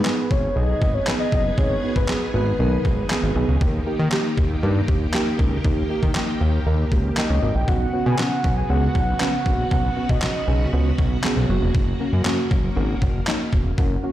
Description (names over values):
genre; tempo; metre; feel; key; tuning
dance-pop; 118 BPM; 4/4; straight; G# minor; A4 = 440 Hz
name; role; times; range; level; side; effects
soft octave-layered synth lead; melody; 0.0-3.1, 7.2-10.9 s; B4 to G#5; -27 LUFS; left 1 dB; chorus, dub echo
deep mellow chord stab; accompaniment; 0.0-14.1 s; A#3 to B4; -26 LUFS; right 2 dB; chorus, sidechain pumping
string machine, violins; sustained chords; 0.0-14.1 s; C#3 to G#4; -31 LUFS; left 1 dB; ensemble chorus, sidechain pumping
detuned 8-bit digital drum machine; drums; 0.1-13.9 s; handclaps, kick drum, snare drum; -23 LUFS; equal; none
fat analog bass; bass; 0.3-14.0 s; E1 to D#3; -21 LUFS; equal; sidechain pumping
room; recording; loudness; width
light reverb; played on a big sound system in a bare room, stone room reverb; -18 LUFS; side -13 dB against mid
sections
0.0-14.1 A section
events
none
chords
0.0 G#m; 3.6 D#; 7.7 Bsus2; 11.5 F#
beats
0.05 0.56 1.07 | 1.58 2.09 2.60 3.10 | 3.61 4.12 4.63 5.14 | 5.64 6.15 6.66 7.17 | 7.68 8.19 8.70 9.21 | 9.71 10.22 10.73 11.24 | 11.75 12.26 12.76 13.27 | 13.78